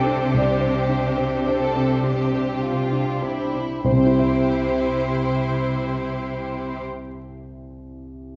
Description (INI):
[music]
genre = cinematic, emotional film score for orchestra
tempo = 48-55 BPM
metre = 3/4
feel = rubato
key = C major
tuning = A4 = 440 Hz
[part]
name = clear studio violin section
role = melody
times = 0.0-6.8 s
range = E4 to C5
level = -31 LUFS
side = equal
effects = none
[part]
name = rich studio violin section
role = second line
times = 0.0-6.8 s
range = G4 to C5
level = -33 LUFS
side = equal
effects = none
[part]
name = clear studio viola section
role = accompaniment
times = 0.0-6.8 s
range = C4 to E4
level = -34 LUFS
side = equal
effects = none
[part]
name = dark baby grand piano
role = accompaniment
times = 0.0-8.4 s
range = C2 to A5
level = -26 LUFS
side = equal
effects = none
[part]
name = clear studio cello section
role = bass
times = 0.0-6.8 s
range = C3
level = -28 LUFS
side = equal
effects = none
[sound]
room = moderate scoring stage reverb, RT60 1.6 s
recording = dark, warm production, nothing above 7.6 kHz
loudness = -22 LUFS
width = mono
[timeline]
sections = 0.0-3.9 A section; 3.9-7.5 B section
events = slowing down 0.0-3.9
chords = 0.0 Csus2; 3.9 C